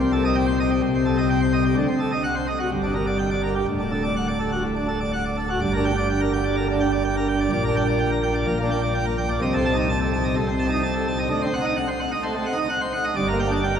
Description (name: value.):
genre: classical, organ toccata.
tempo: 127 BPM.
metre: 4/4.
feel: straight.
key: G minor.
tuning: A4 = 436 Hz.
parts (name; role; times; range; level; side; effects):
pipe organ, plenum; solo; 0.0-13.8 s; D1 to A5; -20 LUFS; equal; none.
room: wet cathedral reverb, RT60 7.3 s.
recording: recorded in a church or concert hall.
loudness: -20 LUFS.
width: side -8 dB against mid.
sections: 0.0-5.6 A section; 5.6-13.8 B section.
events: none.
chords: 0.0 Am7b5/C; 1.8 D7b9; 2.7 Gm; 3.7 D; 5.6 Gm; 7.5 Gm/Bb; 9.4 Adim/C; 11.3 D7b9; 13.2 Gm.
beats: 0.35 0.82 1.30 | 1.76 2.23 2.71 3.18 | 3.67 4.16 4.64 5.12 | 5.61 6.09 6.56 7.04 | 7.52 7.99 8.47 8.94 | 9.42 9.89 10.36 10.84 | 11.31 11.78 12.24 12.71 | 13.18 13.65.